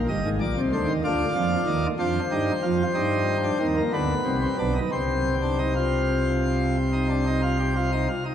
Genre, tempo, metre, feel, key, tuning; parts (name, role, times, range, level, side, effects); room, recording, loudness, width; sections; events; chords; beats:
classical, baroque-style 3-part fugue for pipe organ; 61 BPM (dotted quarters); 12/8; straight; C minor; A4 = 443 Hz
pipe organ, plenum; solo; 0.0-8.3 s; G1 to Eb5; -22 LUFS; equal
wet cathedral reverb, RT60 7.1 s; in a vast, echoing space; -22 LUFS; side -9 dB against mid
0.0-8.3 A section
0.0 Gm; 1.0 Ebmaj13/D; 3.0 Cm/G; 3.9 Bm; 4.9 Cm
0.08 | 1.03 1.99 2.95 3.93 | 4.92 5.92 6.93 7.92